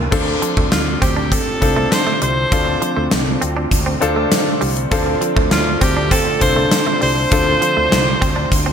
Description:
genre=1980s-style pop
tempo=100 BPM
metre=4/4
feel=straight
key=unclear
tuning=A4 = 440 Hz
part: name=bright concert grand piano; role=accompaniment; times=0.0-8.7 s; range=D3 to A4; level=-21 LUFS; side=left 2 dB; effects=none
part: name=direct-recorded clean electric guitar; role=riff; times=0.0-8.7 s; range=F3 to D4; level=-25 LUFS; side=right 4 dB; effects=lush chorus, ping-pong delay
part: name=fretless electric bass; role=bass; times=0.0-8.7 s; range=C2 to D2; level=-22 LUFS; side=equal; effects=none
part: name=chorused pulse-width pad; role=sustained chords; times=0.1-8.7 s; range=D3 to F4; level=-26 LUFS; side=right 1 dB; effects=none
part: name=gated 80s drum kit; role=drums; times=0.1-8.7 s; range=crash cymbal, hi-hat, kick drum, snare drum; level=-18 LUFS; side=equal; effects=gated reverb
part: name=bright alto saxophone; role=melody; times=0.7-8.7 s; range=F4 to C5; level=-19 LUFS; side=equal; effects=none
room=moderate lush hall reverb, RT60 2.4 s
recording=bright 1980s-style digital production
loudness=-14 LUFS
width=side -8 dB against mid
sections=0.1-8.7 A section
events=none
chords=0.1 Dm7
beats=| 0.12 0.72 1.32 1.92 | 2.52 3.12 3.72 4.32 | 4.92 5.52 6.12 6.72 | 7.32 7.92 8.52

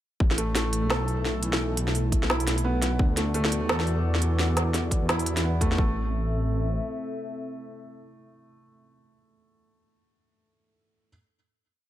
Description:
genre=half-time drum and bass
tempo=172 BPM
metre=4/4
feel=swing 59% on 16ths, half-time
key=A dorian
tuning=A4 = 440 Hz
part: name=dark analog pad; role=sustained chords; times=0.2-9.0 s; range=A3 to E5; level=-34 LUFS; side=left 1 dB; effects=chorus, sidechain pumping
part: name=dark detuned saw bass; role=bass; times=0.2-6.8 s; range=A1 to E2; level=-26 LUFS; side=equal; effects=none
part: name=electronic kick drum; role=drums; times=0.2-5.9 s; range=none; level=-24 LUFS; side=equal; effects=none
part: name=organic electronic drum kit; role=drums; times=0.3-5.8 s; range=hi-hat, snare drum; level=-28 LUFS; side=equal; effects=none
part: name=felt-muted upright piano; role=arpeggios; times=0.4-5.9 s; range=E3 to A4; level=-32 LUFS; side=right 2 dB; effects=digital delay
room=light reverb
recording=none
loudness=-23 LUFS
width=side -12 dB against mid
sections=0.2-5.8 drop; 5.8-8.6 final chord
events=drop 0.2-5.8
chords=0.2 A5; 3.0 D6; 5.8 Am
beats=| 0.20 0.55 0.90 1.25 | 1.60 1.95 2.30 2.65 | 3.00 3.35 3.69 4.04 | 4.39 4.74 5.09 5.44 | 5.79 6.14 6.48 6.83 | 7.18 7.53 7.88 8.23

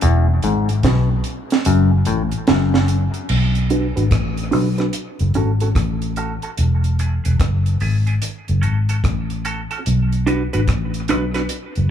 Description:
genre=dub reggae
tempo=73 BPM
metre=4/4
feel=swing 64% on 16ths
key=unclear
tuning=A4 = 444 Hz
part: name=mellow clav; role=riff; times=0.0-2.7 s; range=E2 to B2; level=-21 LUFS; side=left 6 dB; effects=dub echo
part: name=vintage muted fingered electric bass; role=bass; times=0.0-11.9 s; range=E1 to B1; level=-17 LUFS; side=equal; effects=none
part: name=deep reggae drum kit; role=drums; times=0.0-11.9 s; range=crash cymbal, hi-hat, kick drum, rim click, snare drum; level=-22 LUFS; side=right 2 dB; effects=none
part: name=semi-hollow electric guitar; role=accompaniment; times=3.7-11.4 s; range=B3 to B4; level=-24 LUFS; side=right 3 dB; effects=high-pass filter, low-pass filter, dub echo
room=small room ambience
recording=none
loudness=-16 LUFS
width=side -9 dB against mid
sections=0.0-3.3 A section; 3.3-11.9 B section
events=break 0.0-3.3; kick muted 1.7-3.3; filter sweep on clean electric guitar 3.3-11.9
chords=0.0 E; 1.7 F#m; 3.3 Bm; 4.9 F#m; 6.6 E; 8.2 F#m; 9.9 Bm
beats=| 0.02 0.84 1.66 2.48 | 3.30 4.12 4.94 5.76 | 6.58 7.40 8.22 9.04 | 9.86 10.68 11.50

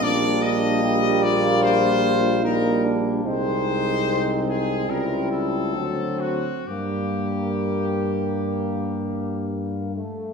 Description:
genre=classical, hymn-like piece for brass band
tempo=62-76 BPM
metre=4/4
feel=rubato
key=G minor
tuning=A4 = 439 Hz
part: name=brilliant trumpet section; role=melody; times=0.0-9.5 s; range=F#4 to Eb5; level=-27 LUFS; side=left 6 dB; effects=none
part: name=mellow flugelhorn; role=second line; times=0.0-9.9 s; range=Bb3 to G4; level=-28 LUFS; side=right 5 dB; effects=none
part: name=clear euphonium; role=accompaniment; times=0.0-10.0 s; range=F#3 to Ab3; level=-28 LUFS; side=right 2 dB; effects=none
part: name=warm trombone section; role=accompaniment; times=0.0-10.3 s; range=A3 to E4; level=-27 LUFS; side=equal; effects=none
part: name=warm tuba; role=bass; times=0.0-10.0 s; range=Bb1 to G2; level=-25 LUFS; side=left 1 dB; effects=none
room=wet recital hall reverb, RT60 1.4 s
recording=recorded in a church or concert hall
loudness=-20 LUFS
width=side -5 dB against mid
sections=0.0-10.3 A section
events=none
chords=0.0 Gm/Bb; 3.2 Ab/C; 4.9 C#dim7; 5.7 D7; 6.7 Gm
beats=| 0.01 0.83 1.65 2.44 | 3.25 4.07 4.89 5.75 | 6.68 7.63 8.55 9.47

